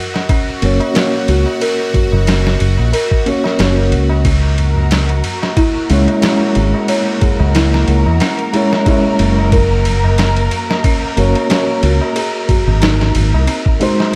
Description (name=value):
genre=trip hop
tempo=91 BPM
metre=4/4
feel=swing 55% on 16ths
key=C# dorian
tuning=A4 = 440 Hz
part: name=music box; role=arpeggios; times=0.0-13.8 s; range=B#3 to C#5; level=-24 LUFS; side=equal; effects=low-pass filter, digital delay
part: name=bowed-like drone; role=texture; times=0.0-14.2 s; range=F#4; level=-31 LUFS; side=equal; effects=built-in reverb, phaser
part: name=tabla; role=percussion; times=0.1-14.1 s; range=none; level=-28 LUFS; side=equal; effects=none
part: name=boom bap sampler-style drum kit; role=drums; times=0.2-14.1 s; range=kick drum, ride cymbal, snare drum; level=-20 LUFS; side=equal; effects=studio reverb
part: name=felt-muted upright piano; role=accompaniment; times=0.6-14.2 s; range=G#3 to C#5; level=-20 LUFS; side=equal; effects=harmonic tremolo, low-pass filter, tape echo
part: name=fingered electric bass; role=bass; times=0.6-13.5 s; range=F#1 to E2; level=-16 LUFS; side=equal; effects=tube saturation
part: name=muted symphonic string section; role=sustained chords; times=4.3-14.2 s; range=A#3 to A#4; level=-24 LUFS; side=equal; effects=none
room=little or no reverb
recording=vinyl crackle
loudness=-14 LUFS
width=mono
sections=0.0-14.2 A section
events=none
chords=0.0 F#; 4.3 C#m; 9.5 F#; 12.2 G#7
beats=0.30 0.95 | 1.61 2.27 2.93 3.59 | 4.25 4.91 5.57 6.23 | 6.89 7.55 8.21 8.87 | 9.53 10.19 10.85 11.51 | 12.16 12.82 13.48 14.14